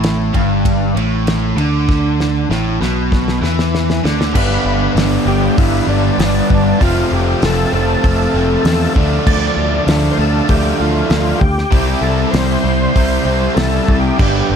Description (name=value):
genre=classic rock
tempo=98 BPM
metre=4/4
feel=straight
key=A minor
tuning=A4 = 440 Hz
part: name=biting overdriven guitar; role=riff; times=0.0-14.6 s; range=F2 to E4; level=-21 LUFS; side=right 9 dB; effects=none
part: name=distorted electric guitar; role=riff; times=0.0-14.6 s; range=F2 to E4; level=-20 LUFS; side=left 6 dB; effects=distortion
part: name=overdriven electric guitar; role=riff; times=0.0-14.6 s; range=F2 to E4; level=-22 LUFS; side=equal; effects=none
part: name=picked electric bass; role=bass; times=0.0-14.6 s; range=F1 to E2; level=-18 LUFS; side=equal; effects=none
part: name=damped 70s drum kit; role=drums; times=0.0-14.3 s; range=crash cymbal, hi-hat, kick drum, ride cymbal, snare drum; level=-18 LUFS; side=equal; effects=none
part: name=overdriven tonewheel organ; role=melody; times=4.3-14.6 s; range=D4 to D5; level=-20 LUFS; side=equal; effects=chorus vibrato, slow rotary speaker
room=light reverb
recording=none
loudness=-12 LUFS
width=side -7 dB against mid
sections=0.0-4.3 A section; 4.3-14.6 B section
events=drum fill 1.9-4.3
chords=0.0 A5; 4.3 G; 6.8 F; 9.0 Dm; 11.7 C